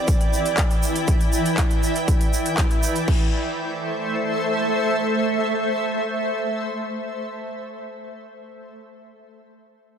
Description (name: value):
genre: progressive house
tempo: 120 BPM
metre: 4/4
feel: straight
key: A minor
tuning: A4 = 438 Hz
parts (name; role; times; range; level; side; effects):
- shimmering ambient pad; sustained chords; 0.0-7.6 s; E3 to G5; -23 LUFS; right 1 dB; chorus, built-in reverb, sidechain pumping
- big-room dance drum kit; drums; 0.1-3.2 s; crash cymbal, handclaps, hi-hat; -29 LUFS; left 1 dB; none
- electronic kick drum; drums; 0.1-3.2 s; none; -20 LUFS; equal; none
- tube shaker; percussion; 0.1-3.1 s; none; -32 LUFS; right 4 dB; none
room: light reverb, digital ambience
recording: none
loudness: -20 LUFS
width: side -8 dB against mid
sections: 0.0-3.1 A section; 3.1-7.1 B section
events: none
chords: 0.0 Em7; 3.1 Am